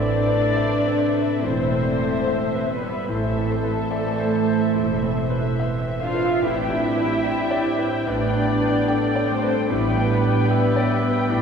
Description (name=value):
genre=cinematic, emotional film score for orchestra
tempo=73 BPM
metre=4/4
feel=rubato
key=A minor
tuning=A4 = 440 Hz
part: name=muted symphonic violin section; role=melody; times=0.0-11.4 s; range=E5 to G5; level=-35 LUFS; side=left 4 dB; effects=none
part: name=mellow clarinet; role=second line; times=0.0-11.4 s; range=G4 to E5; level=-32 LUFS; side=equal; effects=none
part: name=muted studio violin section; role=second line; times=0.0-11.4 s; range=A4 to F5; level=-29 LUFS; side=left 4 dB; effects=none
part: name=small flute group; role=second line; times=0.0-11.4 s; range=A4 to F5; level=-31 LUFS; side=left 1 dB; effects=none
part: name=bright grand piano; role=accompaniment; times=0.0-11.4 s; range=A2 to G5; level=-28 LUFS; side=left 1 dB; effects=none
part: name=muted symphonic viola section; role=accompaniment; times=0.0-11.4 s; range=G4 to G5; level=-31 LUFS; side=equal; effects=none
part: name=warm French horn section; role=sustained chords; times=0.0-11.4 s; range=E3 to B4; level=-30 LUFS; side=left 2 dB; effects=none
part: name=concert harp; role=arpeggios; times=0.0-11.4 s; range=A2 to B5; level=-28 LUFS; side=equal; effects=none
part: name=muted symphonic cello section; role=bass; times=0.0-11.4 s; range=A3 to F4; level=-25 LUFS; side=right 2 dB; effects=none
part: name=muted symphonic double bass section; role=bass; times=0.0-11.4 s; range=E1 to A1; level=-28 LUFS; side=right 4 dB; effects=none
room=wet concert hall reverb, RT60 2.0 s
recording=heard from further back in the room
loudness=-19 LUFS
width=side -6 dB against mid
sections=0.0-11.4 A section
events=none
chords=0.0 Amadd9; 6.4 G/A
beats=0.57 1.42 2.27 | 3.09 3.92 4.75 5.60 | 6.43 7.24 8.07 8.89 | 9.70 10.51 11.31